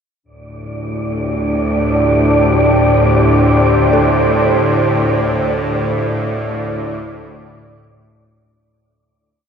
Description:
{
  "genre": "dark ambient drone",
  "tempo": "free time",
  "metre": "none",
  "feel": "none",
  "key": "D minor",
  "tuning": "A4 = 439 Hz",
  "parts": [
    { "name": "deep dark ambient pad", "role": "sustained chords", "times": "1.1-8.6 s", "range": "D4 to F5", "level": "-18 LUFS", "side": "equal", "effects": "chorus, built-in reverb, shimmer reverb" },
    { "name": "bowed-like drone", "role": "drone", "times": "0.6-8.7 s", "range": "D2 to A2", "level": "-16 LUFS", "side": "equal", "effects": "built-in reverb" },
    { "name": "wind-like tuned noise texture", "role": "texture", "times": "0.8-8.6 s", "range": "D5", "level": "-19 LUFS", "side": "equal", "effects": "built-in reverb, shimmer reverb" },
    { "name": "dark detuned synth bell", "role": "arpeggios", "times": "3.0-9.5 s", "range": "D4 to A4", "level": "-29 LUFS", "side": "equal", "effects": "none" }
  ],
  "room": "wet cathedral reverb, RT60 5.5 s",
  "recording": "none",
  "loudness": "-12 LUFS",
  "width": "side -7 dB against mid",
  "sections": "0.2-8.6 A section",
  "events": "fade-out on ambient pad 0.2-8.6; fade-out 4.4-8.6",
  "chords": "0.2 Dm"
}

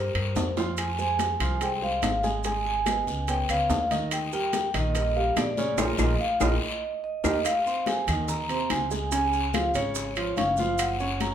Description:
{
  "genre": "Afro-Cuban jazz",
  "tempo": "144 BPM",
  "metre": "4/4",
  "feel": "straight",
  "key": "Eb major, Ab major from 7.5 s",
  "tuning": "A4 = 440 Hz",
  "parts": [
    { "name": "vibraphone with medium mallets", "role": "melody", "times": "0.0-11.3 s", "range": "C5 to Bb5", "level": "-28 LUFS", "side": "equal", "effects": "none" },
    { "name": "warm upright piano", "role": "accompaniment", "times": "0.0-11.3 s", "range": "C3 to Db6", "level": "-32 LUFS", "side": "right 4 dB", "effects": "none" },
    { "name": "upright bass", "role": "bass", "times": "0.0-11.3 s", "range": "Gb1 to G2", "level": "-30 LUFS", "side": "left 1 dB", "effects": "none" },
    { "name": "bongos", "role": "percussion", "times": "0.2-11.3 s", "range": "none", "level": "-37 LUFS", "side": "left 6 dB", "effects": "none" },
    { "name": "claves", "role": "percussion", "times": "0.2-11.0 s", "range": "none", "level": "-38 LUFS", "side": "left 8 dB", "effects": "none" },
    { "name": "congas", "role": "percussion", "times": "0.2-11.3 s", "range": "none", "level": "-36 LUFS", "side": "left 5 dB", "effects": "none" },
    { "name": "timbales", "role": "percussion", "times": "0.2-11.3 s", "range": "none", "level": "-33 LUFS", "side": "right 4 dB", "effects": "none" },
    { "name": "guiro", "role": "percussion", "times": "0.4-11.3 s", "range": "none", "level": "-37 LUFS", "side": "left 5 dB", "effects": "none" },
    { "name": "maracas", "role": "percussion", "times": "0.4-11.3 s", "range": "none", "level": "-39 LUFS", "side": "right 7 dB", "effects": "none" }
  ],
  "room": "moderate large studio reverb, RT60 0.9 s",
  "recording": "band playing live in one room",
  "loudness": "-24 LUFS",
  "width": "side -9 dB against mid",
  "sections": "0.0-7.5 A section; 7.5-11.3 B section",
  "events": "drum fill 0.6, 6.8-7.5; band accent 5.8-7.5",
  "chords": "0.0 C7(no3); 0.8 Fm; 2.4 Abm; 3.3 Db9; 4.1 Ebmaj7; 5.8 Bb5; 6.6 Eb; 7.5 Ab69; 9.1 Db; 10.8 Gbmaj7"
}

